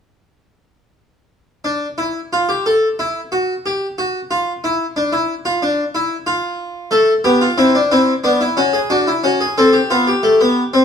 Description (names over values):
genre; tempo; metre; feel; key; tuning
classical, baroque-style 4-part fugue for harpsichord; 91 BPM; 4/4; straight; unclear; A4 = 440 Hz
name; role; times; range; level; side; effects
harpsichord; solo; 1.6-10.8 s; A3 to A4; -14 LUFS; left 1 dB; none
room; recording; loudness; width
moderate stone room reverb, RT60 1.1 s; small room ambience; -14 LUFS; side -7 dB against mid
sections
1.6-10.8 A section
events
none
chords
1.6 N.C.; 6.9 Am; 8.2 G#dim/B; 9.6 Am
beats
| 1.65 2.32 2.98 3.64 | 4.30 4.96 5.62 6.27 | 6.92 7.58 8.24 8.90 | 9.57 10.23